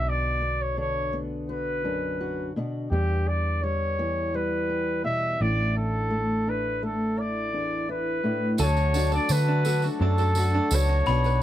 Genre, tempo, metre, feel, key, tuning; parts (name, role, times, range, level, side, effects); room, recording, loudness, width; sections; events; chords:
indie folk with a building arrangement; 84 BPM; 4/4; straight; D major; A4 = 440 Hz
mellow trumpet; melody; 0.0-11.4 s; G4 to E5; -28 LUFS; equal
fingerpicked old ladder-braced acoustic guitar; accompaniment; 0.0-8.6 s; E2 to G4; -30 LUFS; left 1 dB
hollow-body short-scale picked electric bass; bass; 0.0-11.4 s; A1 to D3; -26 LUFS; equal
glockenspiel with rubber mallets; second line; 8.6-11.4 s; A5 to B5; -33 LUFS; left 5 dB
clear concert grand piano; accompaniment; 8.6-11.4 s; B1 to B4; -34 LUFS; left 4 dB
picked steel-string acoustic guitar; accompaniment; 8.6-11.4 s; B2 to F#4; -33 LUFS; left 5 dB
pedal harmonium; sustained chords; 8.6-11.4 s; D4 to B5; -39 LUFS; right 3 dB
open-back banjo; arpeggios; 8.6-11.4 s; D4 to B4; -33 LUFS; right 7 dB
tambourine; percussion; 8.6-11.3 s; -36 LUFS; right 7 dB
small room ambience; dry, close 1970s-style studio recording; -23 LUFS; side -12 dB against mid
0.0-8.6 A section; 8.6-11.4 B section
0.0 Bm; 2.9 Em; 5.4 Asus4; 8.6 D